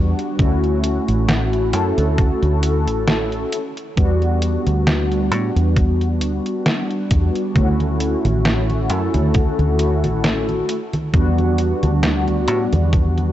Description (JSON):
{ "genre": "vaporwave", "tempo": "67 BPM", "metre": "4/4", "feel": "swing 55% on 16ths", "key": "E dorian", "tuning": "A4 = 440 Hz", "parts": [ { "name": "mellow synth brass", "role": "accompaniment", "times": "0.0-13.3 s", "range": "G3 to A4", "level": "-20 LUFS", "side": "equal", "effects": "lush chorus, tape echo" }, { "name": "fingered electric bass", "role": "bass", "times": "0.0-13.3 s", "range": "A1 to A2", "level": "-19 LUFS", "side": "equal", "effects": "none" }, { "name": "detuned 8-bit digital drum machine", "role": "drums", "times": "0.2-13.3 s", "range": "congas, hi-hat, snare drum", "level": "-22 LUFS", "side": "equal", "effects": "gated reverb" }, { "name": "electronic kick drum", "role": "drums", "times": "0.4-13.1 s", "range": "none", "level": "-17 LUFS", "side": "equal", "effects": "none" } ], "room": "digital ambience", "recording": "cassette tape, nothing above 8.0 kHz", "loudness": "-16 LUFS", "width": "side -12 dB against mid", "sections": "0.0-13.3 A section", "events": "none", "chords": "0.4 Dmaj9; 3.5 Em9; 7.6 Dmaj9; 10.7 Em9" }